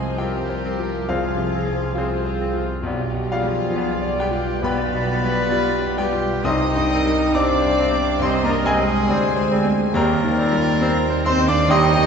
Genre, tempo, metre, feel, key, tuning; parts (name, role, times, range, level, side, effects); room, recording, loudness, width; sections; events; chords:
classical, romantic movement for piano and orchestra; 68 BPM; 4/4; rubato; C minor; A4 = 440 Hz
bright concert grand piano; melody; 0.0-12.1 s; B1 to Eb6; -23 LUFS; left 2 dB
warm studio violin section; melody; 0.0-12.1 s; C4 to F4; -34 LUFS; left 6 dB
concert flute; second line; 0.0-12.1 s; F4 to G5; -30 LUFS; left 1 dB
warm studio violin section; second line; 0.0-12.1 s; C5 to Eb6; -32 LUFS; left 3 dB
dark studio viola section; accompaniment; 0.0-12.1 s; F4 to Eb5; -30 LUFS; right 2 dB
mellow French horn section; sustained chords; 0.0-12.1 s; C3 to Eb4; -27 LUFS; left 2 dB
warm trombone section; sustained chords; 0.0-12.0 s; B2 to G3; -30 LUFS; right 5 dB
bright trumpet; stabs; 0.0-12.1 s; C4 to Eb5; -28 LUFS; right 1 dB
dark studio double bass section; bass; 0.0-12.1 s; B1 to Eb2; -28 LUFS; right 2 dB
mellow tuba; bass; 0.0-12.1 s; B1 to Eb2; -28 LUFS; right 4 dB
warm studio cello section; bass; 0.0-12.1 s; C3 to Eb4; -28 LUFS; equal
bright clarinet; second line; 0.2-11.8 s; B3 to C4; -32 LUFS; left 2 dB
mellow bassoon; accompaniment; 0.2-11.9 s; F3 to G3; -32 LUFS; left 1 dB
wet scoring stage reverb, RT60 1.5 s; heard from further back in the room, nothing above 7.9 kHz; -18 LUFS; side -6 dB against mid
0.0-12.1 A section
0.0 Fm/C; 2.9 G7/B; 6.5 Cm; 10.0 Cm/Eb